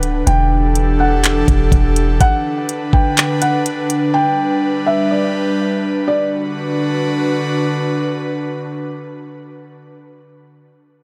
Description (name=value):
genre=hip hop, atmospheric cloud-rap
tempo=124 BPM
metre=4/4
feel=half-time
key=D major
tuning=A4 = 440 Hz
part: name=airy breathy pad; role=sustained chords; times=0.0-9.8 s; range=D3 to B4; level=-20 LUFS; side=equal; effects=chorus, sidechain pumping
part: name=warm 808-style bass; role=bass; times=0.0-2.2 s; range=D1 to E1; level=-18 LUFS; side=equal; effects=none
part: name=smooth R&B drum kit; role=drums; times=0.0-4.0 s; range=handclaps, hi-hat, kick drum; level=-17 LUFS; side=equal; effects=none
part: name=felt-muted upright piano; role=melody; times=0.3-7.5 s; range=D5 to G5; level=-23 LUFS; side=equal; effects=tape echo
room=light reverb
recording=none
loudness=-16 LUFS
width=mono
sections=0.0-6.1 A section; 6.1-9.9 B section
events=none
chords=0.3 Em11; 2.2 D6; 4.1 G; 6.1 D6